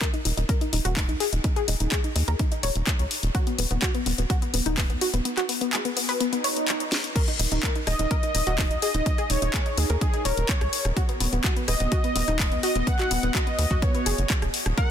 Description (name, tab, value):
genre	progressive house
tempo	126 BPM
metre	4/4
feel	straight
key	unclear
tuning	A4 = 441 Hz
part	analog pluck	arpeggios	0.0-14.9 s	B3 to Db5	-29 LUFS	left 1 dB	chorus, sidechain pumping, digital delay
part	electronic kick drum	drums	0.0-14.9 s	none	-25 LUFS	equal	overdrive, studio ambience
part	house drum kit	drums	0.0-14.9 s	crash cymbal, handclaps, hi-hat, rim click, snare drum	-28 LUFS	left 2 dB	overdrive, studio ambience
part	tight sequencer bass	bass	0.3-14.7 s	Eb1 to Eb2	-26 LUFS	equal	sidechain pumping
part	swell	sound effects	6.3-7.2 s	none	-32 LUFS	right 4 dB	none
part	wide unison lead	melody	7.9-14.9 s	Ab4 to F#5	-29 LUFS	equal	ping-pong delay
room	digital ambience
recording	dense, heavily limited modern master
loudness	-22 LUFS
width	side -9 dB against mid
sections	0.0-14.9 A section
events	kick drops out 5.3-7.2; swell 6.3-7.2; drum fill 6.9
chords	0.0 Eb7(no3); 3.3 Badd9/D#; 7.2 Eb7(no3); 11.0 Badd9/D#